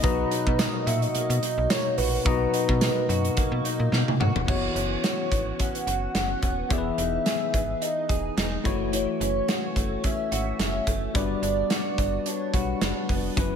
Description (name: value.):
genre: 1980s-style pop.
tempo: 108 BPM.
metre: 4/4.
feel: swing 55% on 16ths.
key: B major.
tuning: A4 = 439 Hz.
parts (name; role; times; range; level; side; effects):
warm velvety synth lead; melody; 0.0-13.6 s; B4 to F#5; -29 LUFS; equal; chorus, digital delay, slapback echo.
bell-like tine electric piano; accompaniment; 0.0-13.6 s; B2 to A#5; -30 LUFS; left 6 dB; slapback echo.
direct-recorded clean electric guitar; riff; 0.0-13.6 s; E3 to G#4; -33 LUFS; right 4 dB; ensemble chorus, slapback echo.
slap-like FM bass; bass; 0.0-13.6 s; D#1 to B2; -29 LUFS; equal; none.
modern studio drum kit; drums; 0.0-13.5 s; crash cymbal, hi-hat, kick drum, snare drum, tambourine, toms; -27 LUFS; right 1 dB; none.
room: moderate lush hall reverb, RT60 2.0 s, small room ambience.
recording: big arena sound.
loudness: -23 LUFS.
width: side -7 dB against mid.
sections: 0.0-4.5 A section; 4.5-13.6 B section.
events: drum fill 3.9-4.5.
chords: 0.0 Bmaj7; 4.5 F#7sus4; 6.7 Emaj7; 8.7 F#m7; 11.2 Gmaj7.